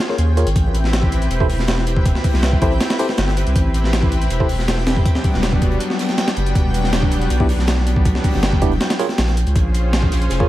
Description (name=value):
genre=drum and bass, jungle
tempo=160 BPM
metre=4/4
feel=straight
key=A minor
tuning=A4 = 440 Hz
part: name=lush unison pad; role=sustained chords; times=0.0-10.5 s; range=F#3 to C5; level=-24 LUFS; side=left 1 dB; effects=chorus, vintage 12-bit sampler grit
part: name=backwards swelling texture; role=texture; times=0.0-10.5 s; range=G5 to G6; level=-32 LUFS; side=left 2 dB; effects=built-in reverb
part: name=tine electric piano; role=stabs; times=0.1-4.5, 7.4-10.5 s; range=B3 to Db5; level=-24 LUFS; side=right 1 dB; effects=medium stereo tremolo, dub echo
part: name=breakbeat sampler-style drum kit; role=drums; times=0.1-10.5 s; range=hi-hat, kick drum, snare drum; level=-18 LUFS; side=equal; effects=none
part: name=saturated sub bass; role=bass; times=0.2-10.5 s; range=E1 to D#2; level=-18 LUFS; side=equal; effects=none
part: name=soft-mallet drum kit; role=drums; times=0.6-10.4 s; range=hi-hat, snare drum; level=-35 LUFS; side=right 3 dB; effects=none
room=little or no reverb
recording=vinyl crackle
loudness=-15 LUFS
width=side -15 dB against mid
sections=0.0-10.5 A section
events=break 0.0-0.6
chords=0.0 Bbm7; 0.6 Am7; 5.1 Em7; 8.8 Bbm7